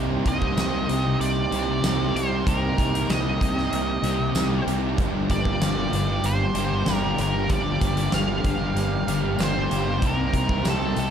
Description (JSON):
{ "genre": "rock, shoegaze and dream pop", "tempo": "95 BPM", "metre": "4/4", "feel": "straight", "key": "unclear", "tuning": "A4 = 442 Hz", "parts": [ { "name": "evolving wavetable pad", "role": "sustained chords", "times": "0.0-11.1 s", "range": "Eb4 to D6", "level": "-34 LUFS", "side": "right 4 dB", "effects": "chorus, built-in reverb" }, { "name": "twelve-string electric guitar", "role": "arpeggios", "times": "0.0-11.1 s", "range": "F3 to G4", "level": "-35 LUFS", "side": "right 8 dB", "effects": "none" }, { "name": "overdriven semi-hollow guitar", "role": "riff", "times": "0.0-11.1 s", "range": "G2 to G4", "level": "-30 LUFS", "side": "right 12 dB", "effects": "reverse reverb" }, { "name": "thick fuzz guitar", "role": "riff", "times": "0.0-11.1 s", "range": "G2 to C4", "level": "-27 LUFS", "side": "left 8 dB", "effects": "distortion, ensemble chorus" }, { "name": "fuzz fingered electric bass", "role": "bass", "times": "0.0-11.1 s", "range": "G1 to C2", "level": "-28 LUFS", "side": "equal", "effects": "overdrive" }, { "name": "octave-fuzz lead guitar", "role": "melody", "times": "0.3-11.1 s", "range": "A4 to F5", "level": "-29 LUFS", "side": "equal", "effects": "distortion, slapback echo" }, { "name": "huge arena drum kit", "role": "drums", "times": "0.3-11.1 s", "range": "hi-hat, kick drum, snare drum", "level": "-28 LUFS", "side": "equal", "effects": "none" }, { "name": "tambourine", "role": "percussion", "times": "0.6-10.8 s", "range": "none", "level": "-40 LUFS", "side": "right 8 dB", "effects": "none" } ], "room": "light reverb", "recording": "dark, warm production", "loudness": "-21 LUFS", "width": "side -8 dB against mid", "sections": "0.0-11.1 A section", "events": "none", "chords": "0.0 Cm7; 5.0 Gm7; 10.0 Cm7" }